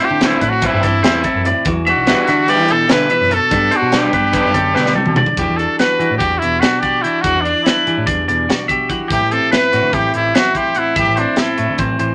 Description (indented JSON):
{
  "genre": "math rock and midwest emo",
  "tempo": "290 BPM (eighths)",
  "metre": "9/8",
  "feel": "straight",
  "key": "unclear",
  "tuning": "A4 = 444 Hz",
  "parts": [
    { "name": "brilliant trumpet", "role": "melody", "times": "0.0-11.9 s", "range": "D4 to B4", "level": "-19 LUFS", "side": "equal", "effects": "none" },
    { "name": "clean electric guitar", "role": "accompaniment", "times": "0.0-12.1 s", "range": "A2 to G4", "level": "-24 LUFS", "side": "equal", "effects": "none" },
    { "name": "twangy electric guitar", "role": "arpeggios", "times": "0.0-12.1 s", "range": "F#4 to G5", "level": "-22 LUFS", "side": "equal", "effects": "none" },
    { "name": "raw garage guitar", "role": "riff", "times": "0.0-5.2 s", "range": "D3 to E4", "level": "-24 LUFS", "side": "equal", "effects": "overdrive" },
    { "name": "crisp fusion drum kit", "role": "drums", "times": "0.0-12.1 s", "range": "hi-hat, kick drum, snare drum, toms", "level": "-21 LUFS", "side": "equal", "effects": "none" },
    { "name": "growling picked electric bass", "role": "bass", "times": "0.1-12.1 s", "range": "A1 to E3", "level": "-24 LUFS", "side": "equal", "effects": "overdrive" }
  ],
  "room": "moderate studio ambience, RT60 0.5 s",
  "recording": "none",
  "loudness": "-15 LUFS",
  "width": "mono",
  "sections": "0.0-5.4 A section; 5.4-12.1 B section",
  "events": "drum fill 4.8-5.4",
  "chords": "0.0 Am9; 1.7 Em9; 3.5 Gmaj9; 5.4 Em9; 9.1 Am9",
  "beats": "0.01 0.21 0.42 0.63 0.83 1.04 1.25 1.45 | 1.66 1.87 2.07 2.28 2.49 2.69 2.90 3.11 3.31 | 3.52 3.73 3.93 4.14 4.34 4.55 4.76 4.96 5.17 | 5.38 5.59 5.79 6.00 6.21 6.41 6.62 6.83 7.04 | 7.24 7.45 7.66 7.86 8.07 8.28 8.48 8.69 8.90 | 9.11 9.31 9.52 9.73 9.94 10.14 10.35 10.56 10.76 | 10.97 11.18 11.38 11.59 11.80 12.00"
}